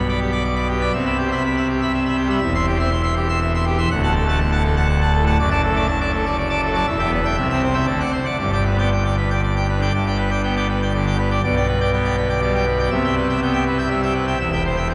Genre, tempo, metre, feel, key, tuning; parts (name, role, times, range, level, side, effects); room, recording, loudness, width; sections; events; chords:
classical, organ toccata; 121 BPM; 3/4; straight; G major; A4 = 440 Hz
pipe organ, full organ; solo; 0.0-14.9 s; D1 to C6; -20 LUFS; equal
wet cathedral reverb, RT60 6.5 s; recorded in a church or concert hall; -20 LUFS; mono
0.0-9.9 A section; 9.9-14.9 A section
0.0 G/B; 0.9 Cmaj7; 2.4 C/E; 3.9 D; 5.4 D/F#; 6.9 Em; 7.4 C; 7.9 D7; 8.4 G; 11.4 G/B; 12.9 Cmaj7; 14.4 C/E